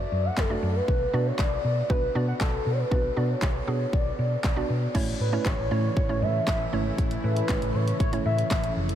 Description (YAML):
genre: dance-pop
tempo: 118 BPM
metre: 4/4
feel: straight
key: A major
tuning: A4 = 440 Hz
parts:
  - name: warm velvety synth lead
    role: melody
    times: 0.0-8.7 s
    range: A4 to F#5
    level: -30 LUFS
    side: equal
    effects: chorus, diffuse ambient delay
  - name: mallet-like synth pluck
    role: accompaniment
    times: 0.0-8.6 s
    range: A3 to D5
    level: -32 LUFS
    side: right 3 dB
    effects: chorus, sidechain pumping
  - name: hollow-body short-scale fingered electric bass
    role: bass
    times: 0.0-8.9 s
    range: F1 to B2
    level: -28 LUFS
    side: equal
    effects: sidechain pumping
  - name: pop drum kit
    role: drums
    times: 0.4-8.9 s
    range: crash cymbal, handclaps, hi-hat, kick drum, snare drum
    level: -28 LUFS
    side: equal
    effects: none
  - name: sweeping resonant pad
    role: sustained chords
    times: 4.9-8.9 s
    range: C#3 to E4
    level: -33 LUFS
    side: left 1 dB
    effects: chorus, sidechain pumping
room: moderate huge ambient reverb, RT60 8.2 s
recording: dreamy mix soaked in reverb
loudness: -23 LUFS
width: side -10 dB against mid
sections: 0.0-5.0 A section; 5.0-8.9 B section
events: none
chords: 0.0 D/F#; 0.9 Bm; 5.0 A